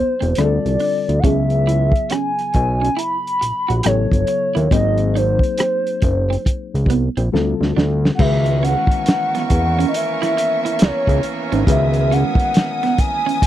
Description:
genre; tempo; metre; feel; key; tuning
R&B, neo-soul; 69 BPM; 4/4; swing 63% on 16ths; C# dorian; A4 = 440 Hz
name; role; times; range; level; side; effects
hollow clarinet-like synth lead; melody; 0.0-13.5 s; B#4 to B5; -20 LUFS; equal; chorus, slapback echo
clean electric guitar; second line; 0.0-13.4 s; B3 to G4; -24 LUFS; right 8 dB; analog chorus
reed electric piano; accompaniment; 0.0-13.5 s; C#3 to B4; -25 LUFS; left 9 dB; spring reverb
fat analog bass; bass; 0.0-12.2 s; E1 to E2; -18 LUFS; equal; none
warm soul drum kit; drums; 0.2-13.5 s; crash cymbal, hi-hat, kick drum, rim click, snare drum; -17 LUFS; equal; none
warm studio string section; sustained chords; 8.2-13.5 s; B3 to D#6; -30 LUFS; equal; none
dark horn section; stabs; 8.2-13.5 s; E3 to A#4; -27 LUFS; right 7 dB; none
room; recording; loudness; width
little or no reverb; dry, close 1970s-style studio recording; -15 LUFS; side -12 dB against mid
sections
0.0-8.2 A section; 8.2-13.5 B section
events
drum fill 7.3-8.2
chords
0.4 Dm7; 1.2 C#m7; 3.8 A9; 4.7 G#9; 7.3 Dm7; 8.2 C#m7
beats
0.36 | 1.23 2.10 2.97 3.84 | 4.71 5.58 6.45 7.32 | 8.19 9.06 9.93 10.80 | 11.67 12.54 13.41

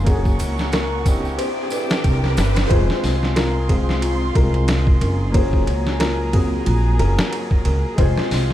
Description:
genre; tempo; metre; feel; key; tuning
trip hop; 91 BPM; 4/4; swing 57% on 16ths; F phrygian; A4 = 440 Hz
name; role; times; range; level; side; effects
dark upright piano; accompaniment; 0.0-8.5 s; Gb3 to Ab4; -26 LUFS; left 1 dB; harmonic tremolo, tape echo
muted studio violin section; sustained chords; 0.0-8.5 s; C4 to D6; -31 LUFS; right 1 dB; vintage 12-bit sampler grit
upright bass; bass; 0.0-8.5 s; F1 to Db2; -20 LUFS; equal; none
riser; sound effects; 0.0-2.7 s; none; -29 LUFS; right 2 dB; none
felt-muted upright piano; melody; 0.1-8.5 s; Ab4 to C5; -27 LUFS; left 2 dB; dub echo
trip hop sampler-style drum kit; drums; 0.1-8.5 s; hi-hat, kick drum, ride cymbal, snare drum; -20 LUFS; equal; none
tambourine and triangle; percussion; 0.1-2.7 s; none; -40 LUFS; equal; none
worn celesta; arpeggios; 2.7-8.5 s; C4 to Bb4; -28 LUFS; left 1 dB; ping-pong delay
room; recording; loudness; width
small room ambience; dark, warm production; -16 LUFS; side -13 dB against mid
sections
0.0-2.7 A section; 2.7-8.5 B section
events
riser 0.0-2.7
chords
0.1 Gbadd9; 1.4 Cadd9; 2.7 Fm; 5.3 Gbadd9; 8.0 Fm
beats
| 0.07 0.73 1.39 2.05 | 2.71 3.37 4.03 4.69 | 5.35 6.00 6.66 7.32 | 7.98

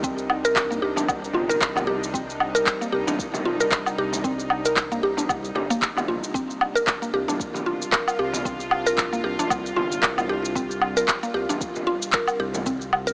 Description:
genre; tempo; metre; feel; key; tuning
organic downtempo; 114 BPM; 4/4; swing 56% on 16ths; C minor; A4 = 441 Hz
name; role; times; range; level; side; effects
bowed-like drone; sustained chords; 0.0-13.1 s; C3 to F4; -30 LUFS; equal; built-in reverb, sidechain pumping
mallet-like synth pluck; arpeggios; 0.0-13.1 s; Bb3 to Bb4; -25 LUFS; equal; chorus, phaser, tape echo
round analog bass; bass; 0.0-13.1 s; G1 to C2; -36 LUFS; equal; none
electronic kick drum; drums; 0.0-12.8 s; none; -34 LUFS; equal; none
electronic shaker, woodblock and handclaps; drums; 0.0-13.1 s; none; -24 LUFS; equal; none
frame drum; percussion; 1.0-12.6 s; none; -33 LUFS; equal; none
room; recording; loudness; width
moderate huge ambient reverb, RT60 6.3 s; small speaker sound; -21 LUFS; side -32 dB against mid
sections
0.0-13.1 A section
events
none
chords
0.0 Cm7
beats
| 0.03 0.56 1.08 1.61 | 2.13 2.66 3.19 3.71 | 4.24 4.77 5.29 5.82 | 6.34 6.87 7.40 7.92 | 8.45 8.98 9.50 10.03 | 10.56 11.08 11.61 12.13 | 12.66

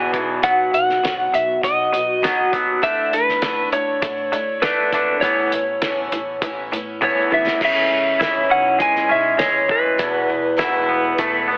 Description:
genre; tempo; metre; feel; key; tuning
folk rock and heartland rock; 100 BPM; 4/4; straight; unclear; A4 = 440 Hz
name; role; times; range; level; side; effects
electric slide guitar; melody; 0.0-11.5 s; B4 to G#5; -19 LUFS; equal; none
picked twelve-string acoustic guitar; accompaniment; 0.0-11.6 s; E2 to G#4; -24 LUFS; equal; none
electric guitar through a small old amp; riff; 0.0-11.6 s; E2 to E4; -20 LUFS; equal; none
upright bass; bass; 0.0-11.6 s; E1 to B2; -37 LUFS; equal; none
cloth-damped thuddy drum kit; drums; 0.1-11.3 s; crash cymbal, hi-hat, kick drum, snare drum, toms; -25 LUFS; equal; none
room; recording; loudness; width
light reverb, small room ambience; heavily compressed radio sound, telephone sound; -16 LUFS; side -35 dB against mid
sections
0.0-7.6 A section; 7.6-11.6 B section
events
drum fill 7.0-7.6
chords
0.4 B; 2.8 Dsus2; 5.2 Aadd9; 7.6 C#m; 10.0 Esus4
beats
| 0.45 1.05 1.64 2.24 | 2.84 3.44 4.03 4.63 | 5.23 5.83 6.42 7.02 | 7.62 8.21 8.81 9.40 | 10.00 10.60 11.20

